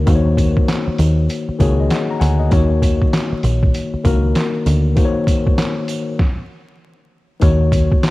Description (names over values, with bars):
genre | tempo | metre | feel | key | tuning
hip hop, boom-bap hip-hop | 98 BPM | 4/4 | swing 63% on 16ths | Eb minor | A4 = 441 Hz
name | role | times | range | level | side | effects
tine electric piano | accompaniment | 0.0-8.1 s | Eb3 to Bb5 | -20 LUFS | left 3 dB | overdrive, fast stereo tremolo, high-pass filter, low-pass filter, cassette tape
deep dub picked electric bass | bass | 0.0-7.9 s | Bb1 to Eb2 | -15 LUFS | equal | transformer saturation
trip hop sampler-style drum kit | drums | 0.1-8.1 s | handclaps, hi-hat, kick drum, snare drum | -17 LUFS | equal | cassette tape
sleigh bells | percussion | 0.1-8.1 s | none | -37 LUFS | right 9 dB | none
room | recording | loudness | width
digital ambience | home recording on cassette, vinyl crackle | -14 LUFS | side -19 dB against mid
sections
0.0-7.4 A section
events
break 5.0-7.4; stop 6.2-7.4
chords
0.0 Ebm7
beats
| 0.07 0.68 1.29 1.91 | 2.52 3.13 3.74 4.36 | 4.97 5.58 6.19 6.80 | 7.42 8.03